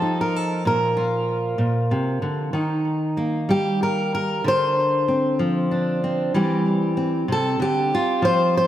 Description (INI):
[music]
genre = folk, solo fingerstyle acoustic guitar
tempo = 63 BPM (dotted quarters)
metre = 6/8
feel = straight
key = Bb major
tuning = A4 = 439 Hz
[part]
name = fingerpicked steel-string acoustic guitar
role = solo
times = 0.0-8.7 s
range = Bb2 to C5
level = -19 LUFS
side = equal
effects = tape echo
[sound]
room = wet lush hall reverb, RT60 1.9 s, small room ambience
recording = dreamy mix soaked in reverb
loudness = -19 LUFS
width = side -12 dB against mid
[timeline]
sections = 0.0-2.5 A section; 2.5-8.7 B section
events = none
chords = 0.0 F7; 0.6 Bb; 2.5 Eb; 4.5 Bbadd9/D; 6.3 C/E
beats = | 0.65 1.60 | 2.55 3.50 | 4.45 5.40 | 6.34 7.29 | 8.23